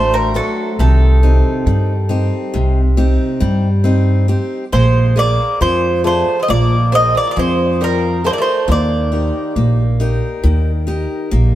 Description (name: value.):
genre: greek folk, Greek bouzouki band.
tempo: 137 BPM (eighths).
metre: 9/8.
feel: straight.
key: unclear.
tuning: A4 = 439 Hz.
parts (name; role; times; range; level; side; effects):
Greek bouzouki; melody; 0.0-11.6 s; A4 to Eb5; -17 LUFS; right 1 dB; none.
Greek bouzouki; second line; 0.0-11.6 s; Eb3 to C4; -27 LUFS; right 1 dB; none.
picked steel-string acoustic guitar; accompaniment; 0.0-11.6 s; C3 to D5; -20 LUFS; left 2 dB; none.
upright bass; bass; 0.0-11.6 s; A1 to G2; -14 LUFS; equal; none.
room: light reverb.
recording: heard from further back in the room.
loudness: -12 LUFS.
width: side -13 dB against mid.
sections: 0.0-11.6 A section.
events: none.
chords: 0.0 D; 0.8 Cm; 4.7 Bb7; 8.7 Eb.